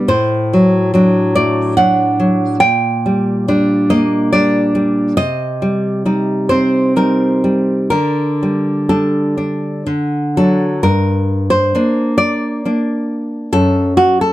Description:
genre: romantic piece for solo classical guitar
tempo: 60-73 BPM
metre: 3/4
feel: rubato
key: G minor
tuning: A4 = 440 Hz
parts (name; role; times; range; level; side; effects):
- nylon-string guitar; solo; 0.0-14.3 s; F#2 to G5; -12 LUFS; equal; none
room: light reverb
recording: dry, close 1970s-style studio recording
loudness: -12 LUFS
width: side -15 dB against mid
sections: 0.0-10.8 A section; 10.8-14.3 B section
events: none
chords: 0.1 D7/A; 2.6 Gm/Bb; 5.2 Cm; 7.9 Dsus4; 9.9 D; 10.8 Gm; 13.5 D/F# (rootless)

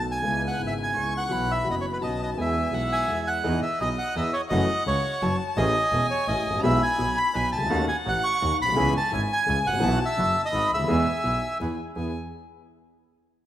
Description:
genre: tango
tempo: 169 BPM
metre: 3/4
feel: rubato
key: E major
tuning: A4 = 440 Hz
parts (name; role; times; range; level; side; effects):
- bandoneon; melody; 0.0-11.6 s; B4 to C#6; -25 LUFS; right 1 dB; none
- dark violin; second line; 0.0-12.1 s; D#5 to C#6; -32 LUFS; left 3 dB; none
- warm concert grand piano; accompaniment; 0.0-12.1 s; E1 to G#4; -28 LUFS; equal; none
- bandoneon; stabs; 0.0-12.1 s; A3 to B4; -41 LUFS; right 4 dB; none
- clear double bass; bass; 0.0-12.1 s; E1 to E2; -31 LUFS; right 1 dB; none
room: moderate lush hall reverb, RT60 2.2 s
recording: rough home demo mix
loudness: -22 LUFS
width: side -12 dB against mid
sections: 0.0-3.4 A section; 3.4-12.0 B section; 12.0-13.0 C section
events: none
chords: 0.2 C#m7; 1.3 Bsus4; 2.0 Badd9; 2.4 E; 3.4 Emaj7; 4.5 F#m7; 5.6 Amaj7; 6.6 E/B; 7.3 Badd9; 7.7 D#m7b5; 8.8 C#m7; 9.8 Bsus4; 10.5 G#m7; 10.9 E

